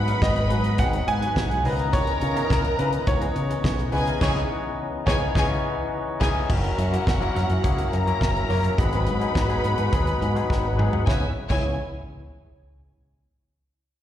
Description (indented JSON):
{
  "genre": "disco",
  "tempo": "105 BPM",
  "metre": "4/4",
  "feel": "straight",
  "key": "C# dorian",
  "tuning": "A4 = 440 Hz",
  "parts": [
    { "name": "warm grand piano", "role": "melody", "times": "0.0-6.2 s", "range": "A#4 to G#5", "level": "-29 LUFS", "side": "equal", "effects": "plate reverb, slapback echo, tape echo" },
    { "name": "dark studio string section", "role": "second line", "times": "0.0-11.8 s", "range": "E4 to B5", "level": "-29 LUFS", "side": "equal", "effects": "plate reverb, slapback echo" },
    { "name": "barky tine electric piano", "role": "accompaniment", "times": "0.0-11.8 s", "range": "E3 to A#4", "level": "-30 LUFS", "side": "left 6 dB", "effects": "overdrive, plate reverb, slapback echo" },
    { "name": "overdriven tonewheel organ", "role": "sustained chords", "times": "0.0-11.3 s", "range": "C#3 to E5", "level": "-33 LUFS", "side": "equal", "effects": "chorus vibrato, slow rotary speaker, plate reverb" },
    { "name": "fingered electric bass with an envelope filter", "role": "bass", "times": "0.0-11.8 s", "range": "F#1 to C#3", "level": "-24 LUFS", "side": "equal", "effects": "none" },
    { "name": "electric guitar at the edge of break-up", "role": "accompaniment", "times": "0.1-11.7 s", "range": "E3 to A#4", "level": "-36 LUFS", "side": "right 7 dB", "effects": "harmonic tremolo, plate reverb, slapback echo" },
    { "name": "damped 70s drum kit", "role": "drums", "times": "0.1-11.6 s", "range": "crash cymbal, hi-hat, kick drum, snare drum, toms", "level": "-25 LUFS", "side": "equal", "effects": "none" }
  ],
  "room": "light reverb",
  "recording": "live gig heard through the venue's PA, recital hall reverb",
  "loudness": "-21 LUFS",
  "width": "side -11 dB against mid",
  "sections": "0.0-6.5 A section; 6.5-11.1 B section; 11.1-13.4 C section",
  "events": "band accent 4.2-6.5; drum fill 10.5-11.1",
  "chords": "0.0 G#m7; 1.6 C#m9; 6.5 F#7; 8.8 G#m7; 11.1 C#m7",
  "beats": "0.22 0.79 1.36 | 1.93 2.50 3.07 3.64 | 4.21 4.78 5.36 5.92 | 6.50 7.07 7.64 8.21 | 8.78 9.35 9.92 10.49 | 11.07 11.64"
}